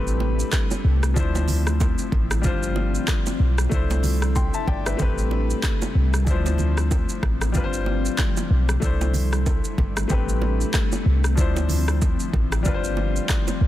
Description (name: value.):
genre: afrobeats.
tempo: 94 BPM.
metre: 4/4.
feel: swing 58% on 16ths.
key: C major.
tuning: A4 = 440 Hz.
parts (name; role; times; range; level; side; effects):
clear baby grand piano; accompaniment; 0.0-13.7 s; E3 to C6; -29 LUFS; left 4 dB; none.
ethereal airy pad; sustained chords; 0.0-13.7 s; C3 to F4; -30 LUFS; left 2 dB; ensemble chorus, built-in reverb.
clean 808-style bass; bass; 0.0-13.7 s; G1 to D2; -22 LUFS; equal; none.
afro-pop drum kit; drums; 0.1-13.6 s; handclaps, hi-hat, kick drum, rim click, shaker; -24 LUFS; equal; soft clipping on snare.
bongos and congas; percussion; 0.2-13.6 s; none; -32 LUFS; right 6 dB; none.
room: digital ambience.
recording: dense, heavily limited modern master.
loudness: -19 LUFS.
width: side -14 dB against mid.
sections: 0.0-13.7 A section.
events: none.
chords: 0.0 Am9; 1.2 Dm9; 2.4 G7sus4; 3.7 C69; 5.0 Am9; 6.3 Dm9; 7.5 G7sus4; 8.8 C69; 10.1 Am9; 11.4 Dm9; 12.7 G7sus4.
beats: 0.53 | 1.17 1.80 2.44 3.08 | 3.72 4.36 4.99 5.63 | 6.27 6.91 7.55 8.19 | 8.82 9.46 10.10 10.74 | 11.38 12.02 12.65 13.29.